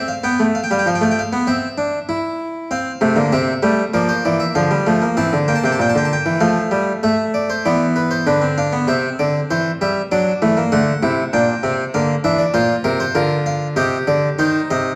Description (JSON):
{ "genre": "classical, baroque-style 3-part fugue for harpsichord", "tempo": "97 BPM", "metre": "4/4", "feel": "straight", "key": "F major", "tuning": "A4 = 440 Hz", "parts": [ { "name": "harpsichord", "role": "solo", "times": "0.0-15.0 s", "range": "Bb2 to A5", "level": "-18 LUFS", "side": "equal", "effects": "none" } ], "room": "wet recital hall reverb, RT60 1.5 s", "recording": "dark, warm production, vinyl crackle", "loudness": "-18 LUFS", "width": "mono", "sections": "0.0-7.6 A section; 7.6-15.0 B section", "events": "none", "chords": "0.2 G7; 1.5 C; 2.7 F/C; 3.9 Bb; 5.2 C7; 6.4 F; 7.6 E5; 8.9 Cadd9; 10.1 D7; 11.3 Gm/Bb; 12.6 Bb; 13.8 Cm" }